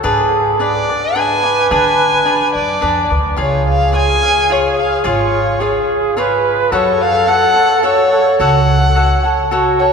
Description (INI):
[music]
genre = mexican folk, mariachi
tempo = 107 BPM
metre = 3/4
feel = straight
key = F# harmonic minor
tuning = A4 = 440 Hz
[part]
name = cavaquinho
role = accompaniment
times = 0.0-9.9 s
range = D4 to F#5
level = -17 LUFS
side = left 1 dB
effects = none
[part]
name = upright bass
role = bass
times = 0.0-9.1 s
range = G#1 to D3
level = -20 LUFS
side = right 1 dB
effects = none
[part]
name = warm trumpet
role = second line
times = 0.1-9.9 s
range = E#4 to B4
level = -17 LUFS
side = right 3 dB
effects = none
[part]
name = dark violin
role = melody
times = 0.6-9.9 s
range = C#5 to G#5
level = -16 LUFS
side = left 2 dB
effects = none
[sound]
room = wet cathedral reverb, RT60 4.9 s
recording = recorded in a church or concert hall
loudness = -11 LUFS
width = side -5 dB against mid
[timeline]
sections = 0.0-9.9 A section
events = none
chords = 0.0 G#dim; 3.4 C#; 6.7 F#m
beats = | 0.04 0.60 1.15 | 1.71 2.26 2.82 | 3.38 3.94 4.50 | 5.06 5.62 6.18 | 6.73 7.29 7.84 | 8.40 8.96 9.52